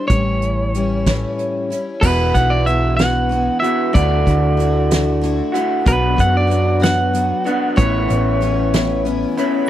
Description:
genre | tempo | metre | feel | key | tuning
folk rock and heartland rock | 62 BPM (dotted quarters) | 6/8 | straight | unclear | A4 = 440 Hz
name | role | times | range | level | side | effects
lightly driven lead guitar | melody | 0.0-9.0 s | B4 to F#5 | -21 LUFS | right 1 dB | none
picked twelve-string acoustic guitar | accompaniment | 0.0-9.7 s | E2 to F#4 | -23 LUFS | left 4 dB | none
hollow-body short-scale picked electric bass | bass | 0.1-9.2 s | E1 to F#2 | -19 LUFS | equal | none
soft brush drum kit | drums | 0.1-9.5 s | crash cymbal, hi-hat, kick drum, snare drum | -18 LUFS | right 1 dB | none
electric guitar through a small old amp | riff | 2.0-9.7 s | E2 to F#4 | -20 LUFS | right 1 dB | none
room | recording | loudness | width
studio ambience | dry, close 1970s-style studio recording | -14 LUFS | side -12 dB against mid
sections
0.0-2.0 A section; 2.0-9.7 B section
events
none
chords
0.1 A7; 2.0 Esus2; 3.9 Dadd9; 5.9 Bm; 7.8 Aadd9

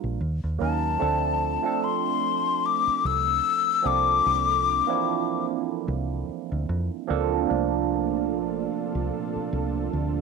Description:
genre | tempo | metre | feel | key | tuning
R&B | 74 BPM | 4/4 | swing 57% on 16ths | unclear | A4 = 441 Hz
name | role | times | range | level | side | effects
barky tine electric piano | accompaniment | 0.0-10.2 s | E3 to Bb4 | -27 LUFS | right 14 dB | phaser
deep dub fingered electric bass | bass | 0.0-10.2 s | Bb1 to F2 | -29 LUFS | right 1 dB | none
breathy hollow jazz flute | melody | 0.6-5.5 s | A5 to E6 | -23 LUFS | left 10 dB | slapback echo
lush unison pad | sustained chords | 7.5-10.2 s | Bb2 to A4 | -33 LUFS | right 2 dB | chorus
room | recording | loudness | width
light reverb, digital ambience | 1960s-style stereo with parts hard left and right | -23 LUFS | side -4 dB against mid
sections
0.0-7.5 A section; 7.5-10.2 B section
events
tine electric piano solo 7.5-10.2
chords
0.2 Ebm7; 1.0 Dm7; 3.8 C13sus4

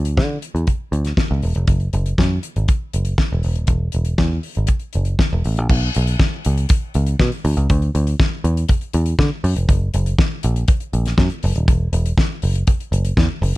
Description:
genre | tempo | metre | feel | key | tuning
disco | 120 BPM | 4/4 | straight | unclear | A4 = 437 Hz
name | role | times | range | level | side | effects
picked electric bass | bass | 0.0-13.5 s | D#1 to D3 | -18 LUFS | equal | none
damped 70s drum kit | drums | 0.1-13.5 s | crash cymbal, hi-hat, kick drum, snare drum | -18 LUFS | equal | none
room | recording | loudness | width
little or no reverb | dark, warm production | -16 LUFS | side -19 dB against mid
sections
0.0-5.7 A section; 5.7-13.6 B section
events
none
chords
none

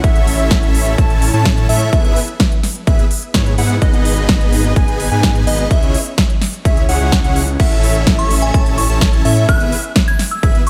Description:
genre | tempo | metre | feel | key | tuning
EDM, festival progressive house | 127 BPM | 4/4 | straight | unclear | A4 = 438 Hz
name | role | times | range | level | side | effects
plucky unison lead | arpeggios | 0.0-10.6 s | C#5 to A5 | -26 LUFS | equal | sidechain pumping, delay
dense compressed supersaw | riff | 0.0-10.6 s | B3 to A5 | -23 LUFS | equal | sidechain pumping, delay
detuned saw bass | bass | 0.0-10.6 s | G#1 to A2 | -20 LUFS | equal | chorus, sidechain pumping
big-room dance drum kit | drums | 0.0-10.7 s | crash cymbal, hi-hat, snare drum | -22 LUFS | equal | overdrive, small room reverb
electronic kick drum | drums | 0.0-10.5 s | none | -16 LUFS | equal | overdrive, small room reverb
glassy synth bell | melody | 8.2-10.7 s | G#5 to G#6 | -24 LUFS | equal | chorus, delay
room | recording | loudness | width
light reverb, digital ambience | none | -14 LUFS | mono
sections
0.0-10.7 A section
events
none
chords
0.0 A; 1.9 E/G#; 3.8 G#m; 5.7 C#m; 7.6 A; 9.5 E/G#

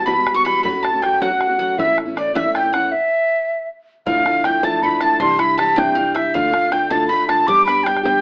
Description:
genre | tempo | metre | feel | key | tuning
celtic folk, Celtic jig | 105 BPM (dotted quarters) | 6/8 | straight | D dorian from 4.1 s | A4 = 443 Hz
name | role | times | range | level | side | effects
wooden flute | melody | 0.0-8.2 s | D5 to D6 | -17 LUFS | equal | none
bowl-back mandolin | second line | 0.0-8.2 s | D5 to D6 | -25 LUFS | equal | none
breathy mellow tin whistle | second line | 0.0-8.2 s | E6 to D7 | -24 LUFS | left 1 dB | none
fingerpicked plugged-in steel-string acoustic guitar | accompaniment | 0.0-8.2 s | D2 to G4 | -22 LUFS | equal | none
upright bass | bass | 0.0-8.2 s | E1 to D2 | -39 LUFS | equal | none
bodhran | percussion | 0.1-8.2 s | none | -26 LUFS | equal | none
room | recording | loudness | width
moderate studio reverb, RT60 0.5 s | AM radio sound | -15 LUFS | side -28 dB against mid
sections
0.0-4.1 A section; 4.1-8.2 B section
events
stop 2.9-4.1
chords
0.0 Emadd9; 0.6 F#m; 1.8 A; 2.9 N.C.; 4.1 Dmadd9; 5.2 Cadd9; 6.3 Dm; 7.5 G

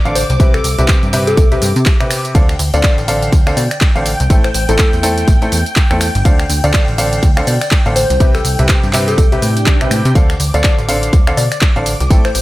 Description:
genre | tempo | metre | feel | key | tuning
piano house | 123 BPM | 4/4 | swing 59% on 16ths | D dorian | A4 = 439 Hz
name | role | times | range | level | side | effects
string machine, violins | sustained chords | 0.0-12.4 s | G5 to D6 | -25 LUFS | equal | ensemble chorus, sidechain pumping
bright upright piano | riff | 0.1-12.3 s | C3 to G5 | -18 LUFS | equal | sidechain pumping
plucky analog bass | bass | 0.1-12.4 s | G1 to C3 | -16 LUFS | equal | sidechain pumping
house drum kit | drums | 0.1-12.4 s | finger snaps, handclaps, hi-hat, tambourine | -20 LUFS | equal | none
soft struck synth lead | melody | 0.2-12.4 s | G4 to D5 | -21 LUFS | left 2 dB | chorus, tape echo
breakbeat sampler-style drum kit | drums | 0.2-12.4 s | ride cymbal, snare drum | -31 LUFS | right 2 dB | none
electronic kick drum | drums | 0.4-12.2 s | none | -12 LUFS | equal | none
swell | sound effects | 9.5-10.2 s | none | -25 LUFS | right 4 dB | none
room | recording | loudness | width
digital ambience | none | -10 LUFS | side -17 dB against mid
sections
0.0-12.4 A section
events
swell 9.5-10.2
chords
0.4 Cmaj7; 2.4 Dm7; 4.3 Am7; 6.3 Dm7; 8.2 Cmaj7; 10.2 Dm7

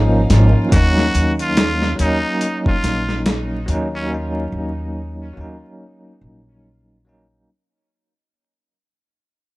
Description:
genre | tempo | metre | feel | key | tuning
trip hop | 71 BPM | 4/4 | swing 58% on 16ths | unclear | A4 = 443 Hz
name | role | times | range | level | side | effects
bell-like tine electric piano | accompaniment | 0.0-7.5 s | F3 to Eb4 | -21 LUFS | equal | medium stereo tremolo, vintage 12-bit sampler grit, tape echo
warm chamber violin section | sustained chords | 0.0-0.7 s | Eb4 to F5 | -34 LUFS | equal | none
upright bass | bass | 0.0-7.4 s | Ab1 to Eb2 | -18 LUFS | equal | none
dusty soul sampler-style drum kit | drums | 0.3-3.9 s | hi-hat, kick drum, snare drum | -20 LUFS | equal | overdrive
trumpet with straight mute | melody | 0.7-4.1 s | Db4 to Gb4 | -24 LUFS | equal | vintage 12-bit sampler grit, tape echo
room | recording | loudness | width
small room ambience | vinyl crackle | -15 LUFS | side -20 dB against mid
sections
0.7-7.5 A section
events
fade-out 0.7-7.5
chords
0.0 Db69; 0.7 Ebm7

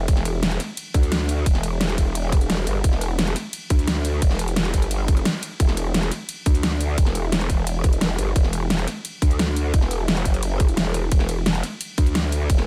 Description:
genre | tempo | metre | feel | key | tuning
dark technical drum and bass | 174 BPM | 4/4 | straight | E minor | A4 = 440 Hz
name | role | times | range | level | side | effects
growl bass | bass | 0.0-12.7 s | E1 to D2 | -26 LUFS | equal | chorus, tube saturation, sidechain pumping
dubstep drum kit | drums | 0.1-12.7 s | hi-hat, ride cymbal, snare drum | -28 LUFS | equal | overdrive
electronic kick drum | drums | 0.1-12.6 s | none | -21 LUFS | equal | none
room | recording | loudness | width
little or no reverb | none | -22 LUFS | mono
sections
0.0-12.7 A section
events
break 5.3-5.6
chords
none

